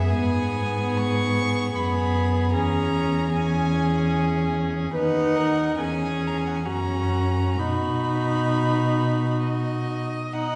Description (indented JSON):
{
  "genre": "classical, slow romantic movement for string quartet",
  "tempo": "64-80 BPM",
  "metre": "3/4",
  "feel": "rubato",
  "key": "B major",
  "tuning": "A4 = 439 Hz",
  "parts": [
    { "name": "warm violin", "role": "melody", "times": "0.0-10.6 s", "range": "D#5 to C#6", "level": "-34 LUFS", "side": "equal", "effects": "none" },
    { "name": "dark violin", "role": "second line", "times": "0.0-10.6 s", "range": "D#4 to B4", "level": "-32 LUFS", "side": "equal", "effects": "none" },
    { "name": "warm viola", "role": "accompaniment", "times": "0.0-10.6 s", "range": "B3 to D#5", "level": "-29 LUFS", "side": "equal", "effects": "none" },
    { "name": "dark cello", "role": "bass", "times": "0.0-10.6 s", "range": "D#2 to B2", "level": "-27 LUFS", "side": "equal", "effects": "none" }
  ],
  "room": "wet scoring stage reverb, RT60 1.7 s",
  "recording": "heard from further back in the room, nothing above 10.4 kHz",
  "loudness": "-24 LUFS",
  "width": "mono",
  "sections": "0.0-10.3 A section",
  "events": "none",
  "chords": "0.1 G#m; 2.5 C#m/E; 5.0 B/D#; 5.8 C#m/E; 6.7 F#; 7.6 B"
}